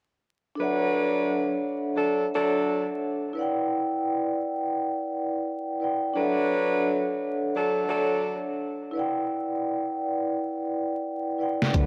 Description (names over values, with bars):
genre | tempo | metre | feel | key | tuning
hip hop, boom-bap hip-hop | 86 BPM | 4/4 | swing 62% on 16ths | D major | A4 = 436 Hz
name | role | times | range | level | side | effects
vibraphone with soft mallets | accompaniment | 0.6-11.9 s | D4 to G5 | -29 LUFS | equal | cassette tape, high-pass filter, low-pass filter
warm saxophone section | stabs | 0.6-11.9 s | F#3 to B4 | -29 LUFS | equal | high-pass filter, low-pass filter, cassette tape, analog delay
trip hop sampler-style drum kit | drums | 11.6-11.9 s | hi-hat, kick drum, snare drum | -24 LUFS | equal | cassette tape
deep dub fingered electric bass | bass | 11.7-11.9 s | D2 | -27 LUFS | equal | none
room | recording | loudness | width
moderate spring reverb, RT60 2.4 s | home recording on cassette, vinyl crackle | -27 LUFS | mono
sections
0.6-11.9 A section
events
drum fill 10.4-11.7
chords
0.6 Dmaj7; 3.4 Em7; 6.2 Dmaj7; 9.0 Em7